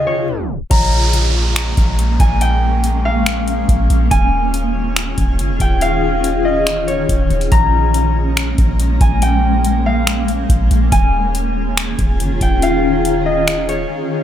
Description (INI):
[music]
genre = hip hop, atmospheric cloud-rap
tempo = 141 BPM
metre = 4/4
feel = half-time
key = Bb dorian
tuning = A4 = 437 Hz
[part]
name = concert harp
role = melody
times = 0.0-14.2 s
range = Db5 to Bb5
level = -20 LUFS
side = left 1 dB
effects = low-pass filter, tape echo
[part]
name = granular cloud pad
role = sustained chords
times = 0.0-14.2 s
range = Eb2 to Ab4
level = -20 LUFS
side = left 1 dB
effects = built-in reverb, sidechain pumping
[part]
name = soft 808-style bass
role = bass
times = 0.7-13.9 s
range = Eb1 to Bb1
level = -17 LUFS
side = equal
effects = none
[part]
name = booming analog drum machine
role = drums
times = 0.7-13.8 s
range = finger snaps, hi-hat, kick drum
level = -17 LUFS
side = equal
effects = none
[part]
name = downlifter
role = sound effects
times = 0.7-4.1 s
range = none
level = -25 LUFS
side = right 4 dB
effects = none
[sound]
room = digital ambience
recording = tape stop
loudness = -13 LUFS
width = side -10 dB against mid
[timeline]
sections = 0.7-14.2 A section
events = tape stop 0.3-0.7; break 13.9-14.2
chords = 0.0 Eb9sus4; 0.7 Bbm7; 4.1 Eb9sus4; 7.5 Bbm7; 10.9 Eb9sus4